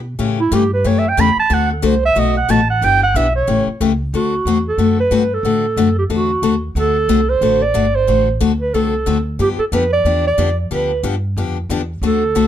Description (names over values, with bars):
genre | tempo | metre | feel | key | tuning
acoustic string swing (jazz manouche) | 183 BPM | 4/4 | swing 59% on 8ths | D mixolydian | A4 = 440 Hz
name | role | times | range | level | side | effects
upright bass | bass | 0.0-12.5 s | G1 to B2 | -20 LUFS | equal | none
picked steel-string acoustic guitar | accompaniment | 0.2-12.5 s | B2 to A4 | -18 LUFS | left 6 dB | none
breathy clarinet | melody | 0.4-12.5 s | E4 to B5 | -16 LUFS | right 3 dB | slapback echo
room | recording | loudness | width
light reverb | none | -14 LUFS | side -10 dB against mid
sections
0.0-4.1 A section; 4.1-12.5 B section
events
clarinet solo 0.0-4.1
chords
0.2 A7; 1.5 D7; 2.2 B7; 2.8 Em7; 3.5 A7; 4.1 D7; 9.4 G7